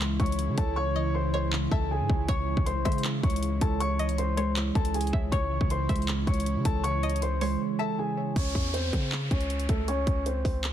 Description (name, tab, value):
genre	hip hop, trap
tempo	158 BPM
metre	4/4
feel	half-time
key	C# harmonic minor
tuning	A4 = 440 Hz
part	muted felt-like synth keys	accompaniment	0.0-8.4 s	C#3 to C#5	-32 LUFS	right 2 dB	chorus
part	airy breathy pad	sustained chords	0.0-8.3 s	C#3 to E4	-37 LUFS	right 1 dB	chorus
part	hard-hitting 808-style bass	bass	0.0-10.7 s	B#1 to C#3	-30 LUFS	equal	none
part	trap drum kit	drums	0.0-10.7 s	handclaps, hi-hat, kick drum	-29 LUFS	equal	overdrive
part	dark baby grand piano	melody	0.2-10.6 s	A3 to C#6	-32 LUFS	left 2 dB	low-pass filter, tape echo
part	string-like resonator pluck	second line	1.0-8.3 s	C#5 to E5	-39 LUFS	left 2 dB	chorus, tape echo
part	downlifter	sound effects	8.4-10.7 s	none	-37 LUFS	equal	none
room	digital ambience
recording	dense, heavily limited modern master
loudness	-25 LUFS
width	side -10 dB against mid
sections	0.0-8.4 A section; 8.4-10.7 B section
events	hi-hats muted 0.8-2.3; break 7.6-8.4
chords	0.0 C#m